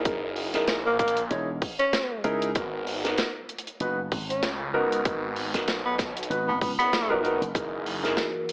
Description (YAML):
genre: glitch hop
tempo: 96 BPM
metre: 4/4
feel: swing 57% on 16ths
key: G# minor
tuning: A4 = 440 Hz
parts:
  - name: phased detuned saw bass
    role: bass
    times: 0.0-8.2 s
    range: F#1 to C#2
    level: -33 LUFS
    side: equal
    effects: phaser, overdrive
  - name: dark baby grand piano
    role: stabs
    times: 0.1-8.3 s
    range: B3 to C#5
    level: -28 LUFS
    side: equal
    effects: sidechain pumping, tape echo
  - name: electronic kick drum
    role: drums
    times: 0.1-7.7 s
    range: none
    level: -29 LUFS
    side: equal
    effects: none
  - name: tight metal drum kit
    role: drums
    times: 0.1-8.5 s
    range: hi-hat, snare drum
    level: -30 LUFS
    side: equal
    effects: none
  - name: breathy tenor saxophone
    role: melody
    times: 0.9-7.2 s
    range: A#3 to C#4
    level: -25 LUFS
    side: equal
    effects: tape echo
  - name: slap bass with an envelope filter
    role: bass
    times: 1.3-7.5 s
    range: E1 to C#2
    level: -32 LUFS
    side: equal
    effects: none
  - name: dark analog pad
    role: sustained chords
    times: 8.0-8.5 s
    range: E3 to A#4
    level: -34 LUFS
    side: equal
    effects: chorus, sidechain pumping
room: moderate small room reverb, RT60 0.6 s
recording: AM radio sound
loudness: -24 LUFS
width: side -30 dB against mid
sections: 0.0-8.5 A section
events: none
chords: 0.0 F#13; 2.6 G#m7; 7.6 F#13